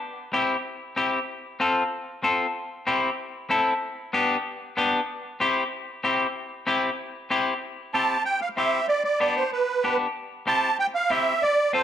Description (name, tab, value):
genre	latin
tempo	189 BPM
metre	4/4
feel	straight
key	C major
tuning	A4 = 440 Hz
part	clean electric guitar	accompaniment	0.3-11.8 s	B3 to A4	-24 LUFS	left 2 dB	spring reverb
part	musette accordion	melody	7.9-11.8 s	B4 to A5	-22 LUFS	right 3 dB	none
room	moderate studio reverb, RT60 0.7 s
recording	dark, warm production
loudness	-23 LUFS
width	side -10 dB against mid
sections	0.0-7.6 A section; 7.6-11.8 B section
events	none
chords	0.0 C; 1.3 F; 2.6 C; 3.8 G; 5.1 C; 8.9 G; 10.2 C